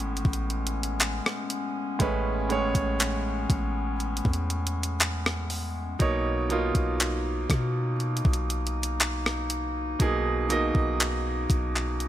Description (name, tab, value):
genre	contemporary R&B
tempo	60 BPM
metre	4/4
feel	straight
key	unclear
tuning	A4 = 440 Hz
part	clear baby grand piano	accompaniment	0.0-12.1 s	A2 to D#5	-30 LUFS	right 3 dB	none
part	dark woodwind section	sustained chords	0.0-12.1 s	B2 to D#4	-34 LUFS	left 3 dB	none
part	warm 808-style bass	bass	0.0-12.1 s	G#1 to B2	-30 LUFS	equal	none
part	crisp 8-bit digital drum machine	drums	0.0-12.1 s	handclaps, hi-hat, kick drum, rim click	-26 LUFS	equal	overdrive
room	digital ambience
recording	none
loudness	-25 LUFS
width	side -12 dB against mid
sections	0.0-12.1 A section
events	none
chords	0.0 Amaj9; 6.0 Bmaj9